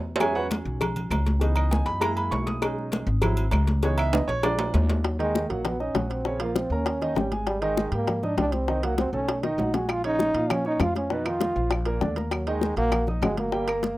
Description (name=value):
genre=Afro-Cuban jazz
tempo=198 BPM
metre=4/4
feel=straight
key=Eb minor from 5.0 s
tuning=A4 = 440 Hz
part: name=upright bass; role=bass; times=0.0-13.9 s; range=G1 to Bb2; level=-28 LUFS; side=equal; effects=none
part: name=warm grand piano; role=accompaniment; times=0.2-13.9 s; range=Bb2 to D#6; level=-30 LUFS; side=right 2 dB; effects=none
part: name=claves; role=percussion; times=0.2-4.6, 9.9-13.8 s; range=none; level=-36 LUFS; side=equal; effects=none
part: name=congas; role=percussion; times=0.2-14.0 s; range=none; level=-32 LUFS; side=left 1 dB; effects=none
part: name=cowbell and bongos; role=percussion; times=0.2-14.0 s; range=none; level=-30 LUFS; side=left 6 dB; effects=none
part: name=timbales and agogo bells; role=percussion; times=0.2-14.0 s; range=none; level=-32 LUFS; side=right 4 dB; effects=none
part: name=breathy trombone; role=melody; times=5.1-14.0 s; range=Gb3 to F#4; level=-27 LUFS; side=right 1 dB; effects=none
room=light reverb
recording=rough home demo mix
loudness=-23 LUFS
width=side -17 dB against mid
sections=0.0-5.0 A section; 5.0-14.0 B section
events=drum fill 0.0, 4.1-5.0, 9.4-9.9; grand piano solo 0.0-5.0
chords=0.2 E69; 1.4 C#m7; 2.0 F#7; 2.6 B69; 3.2 G#aug7; 3.8 C#m7; 4.4 A#7; 5.0 Ebm7; 6.3 Bbm; 6.9 Eb7; 7.5 Abmaj7; 8.7 Cdim; 9.3 B7; 9.9 Bbm7; 11.1 Bmaj7#11; 11.7 Bb; 12.3 Ebm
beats=| 0.21 0.51 0.81 1.11 | 1.42 1.72 2.02 2.32 | 2.62 2.93 3.23 3.53 | 3.83 4.13 4.44 4.74 | 5.04 5.34 5.65 5.95 | 6.25 6.56 6.86 7.16 | 7.47 7.77 8.07 8.38 | 8.68 8.98 9.29 9.59 | 9.89 10.19 10.50 10.80 | 11.10 11.41 11.71 12.01 | 12.32 12.62 12.92 13.22 | 13.53 13.83